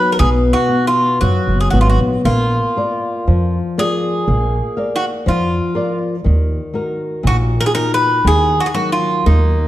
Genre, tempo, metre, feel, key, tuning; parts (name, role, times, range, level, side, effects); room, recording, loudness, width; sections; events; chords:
fado-style ballad; 60 BPM; 2/4; rubato; Eb harmonic minor; A4 = 440 Hz
Greek bouzouki; melody; 0.0-9.7 s; Eb4 to B4; -18 LUFS; right 1 dB
flamenco guitar; accompaniment; 0.0-9.7 s; Bb2 to F5; -19 LUFS; left 2 dB
upright bass; bass; 0.2-9.7 s; F#1 to F#2; -15 LUFS; right 1 dB
moderate recital hall reverb, RT60 1.6 s; dark, warm production; -14 LUFS; side -14 dB against mid
0.0-9.7 A section
0.0 B; 2.2 Bb; 6.2 Ebm